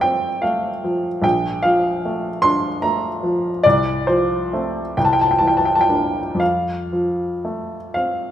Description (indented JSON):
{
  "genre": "classical, romantic nocturne for solo piano",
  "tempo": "38-51 BPM (dotted quarters)",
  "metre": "6/8",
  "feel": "rubato",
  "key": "F major",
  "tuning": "A4 = 442 Hz",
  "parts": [
    { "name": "clear upright piano", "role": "solo", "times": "0.0-8.3 s", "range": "Bb1 to C6", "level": "-17 LUFS", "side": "equal", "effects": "none" }
  ],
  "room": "moderate recital hall reverb, RT60 1.6 s",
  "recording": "minimal, uncompressed stereo recording",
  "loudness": "-17 LUFS",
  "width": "side -11 dB against mid",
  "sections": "0.0-8.3 A section",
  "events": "none",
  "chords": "0.0 F; 1.2 Bbmaj7; 3.6 F/C; 5.0 C9; 6.4 F"
}